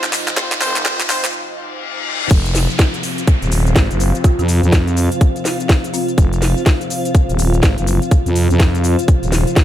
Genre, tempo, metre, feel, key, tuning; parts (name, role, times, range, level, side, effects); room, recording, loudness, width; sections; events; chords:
bass house; 124 BPM; 4/4; swing 61% on 16ths; A4 = 439 Hz
sweeping resonant pad; sustained chords; 0.0-9.6 s; C3 to Eb4; -26 LUFS; left 1 dB; chorus, sidechain pumping
clear horn section; stabs; 0.0-1.2 s; C4 to C5; -25 LUFS; equal; sidechain pumping, dub echo
garage drum kit; drums; 0.0-9.6 s; crash cymbal, handclaps, hi-hat, shaker, snare drum; -21 LUFS; equal
riser, reverse cymbal and downlifter; sound effects; 0.0-6.2 s; -25 LUFS; left 2 dB
granular cloud pad; texture; 0.0-9.6 s; F4 to F5; -25 LUFS; right 1 dB; built-in reverb, sidechain pumping
electronic kick drum; drums; 0.4-9.6 s; -13 LUFS; equal; high-pass filter on kick, high-pass filter on room
growling FM bass; bass; 0.6-9.4 s; Eb1 to F2; -15 LUFS; equal; tube saturation, sidechain pumping, high-pass filter
folk marimba with medium mallets; melody; 4.2-6.4 s; C4 to F4; -28 LUFS; left 2 dB; vintage 12-bit sampler grit, dub echo
little or no reverb; high-pass filter; -13 LUFS; side -12 dB against mid
0.0-2.3 A section; 2.3-9.6 B section
build-up 0.0-2.3; drum fill 0.0-1.3; riser 0.0-1.3; break 1.3-2.3; reverse cymbal 1.3-2.3; drop 2.3-9.6
0.0 F5